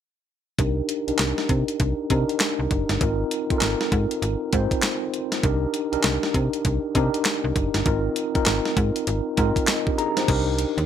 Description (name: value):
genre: R&B, new jack swing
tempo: 99 BPM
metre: 4/4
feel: swing 62% on 16ths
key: C minor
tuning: A4 = 440 Hz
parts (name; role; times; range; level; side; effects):
- mellow tine electric piano; accompaniment; 0.6-10.9 s; C4 to Bb5; -24 LUFS; equal; medium stereo tremolo, low-pass filter
- slap-like FM bass; bass; 0.6-10.9 s; F#1 to C3; -24 LUFS; equal; none
- clean 12-bit digital drum machine; drums; 0.6-10.9 s; crash cymbal, handclaps, hi-hat, kick drum, snare drum; -24 LUFS; equal; none
room: little or no reverb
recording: none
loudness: -21 LUFS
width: side -9 dB against mid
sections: 0.6-10.3 A section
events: filter sweep on tine electric piano 0.6-10.3; tine electric piano fill 9.4-10.3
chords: 0.6 Cm7; 3.0 Ab6; 5.4 Cm7; 7.9 Ab6; 10.3 Cm7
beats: | 0.59 1.19 1.80 2.40 | 3.01 3.62 4.22 4.83 | 5.44 6.04 6.65 7.25 | 7.86 8.47 9.07 9.68 | 10.28